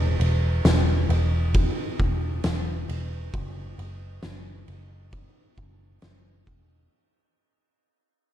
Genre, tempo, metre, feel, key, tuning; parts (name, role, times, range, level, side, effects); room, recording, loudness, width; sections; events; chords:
dream pop; 67 BPM; 4/4; straight; A4 = 440 Hz
vintage muted picked electric bass; bass; 0.0-6.9 s; E1 to F#1; -25 LUFS; equal
oversized low-tuned drum kit; drums; 0.2-6.7 s; kick drum, ride cymbal, snare drum, tambourine; -25 LUFS; equal
light reverb; dark, warm production; -22 LUFS; side -12 dB against mid
0.0-6.9 A section
fade-out 0.0-6.9